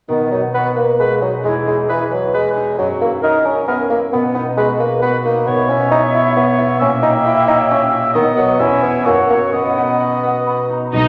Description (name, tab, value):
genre	cinematic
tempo	134 BPM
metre	3/4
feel	straight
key	B major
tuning	A4 = 442 Hz
part	bright clarinet	second line	0.1-10.7 s	A#3 to F#4	-26 LUFS	equal	none
part	mellow bassoon	accompaniment	0.1-10.7 s	D#3 to E4	-18 LUFS	equal	none
part	concert harp	arpeggios	0.1-11.1 s	E2 to C#5	-23 LUFS	equal	none
part	large flute ensemble	second line	0.5-10.8 s	D#5 to B5	-26 LUFS	equal	none
part	warm oboe	second line	0.5-10.7 s	A#4 to E5	-22 LUFS	equal	none
part	clear symphonic viola section	accompaniment	10.9-11.1 s	D#4	-17 LUFS	equal	none
part	rich chamber double bass section	bass	10.9-11.1 s	B1	-23 LUFS	equal	none
part	rich studio cello section	bass	10.9-11.1 s	B2	-21 LUFS	equal	none
room	wet scoring stage reverb, RT60 1.6 s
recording	none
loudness	-16 LUFS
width	mono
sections	0.1-10.9 A section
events	none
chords	0.1 B; 1.4 Emaj7; 2.8 F#9; 4.1 B; 5.5 C#m7/B; 6.8 A#dim7; 8.1 B; 8.6 C#m/E; 9.1 F#; 9.5 B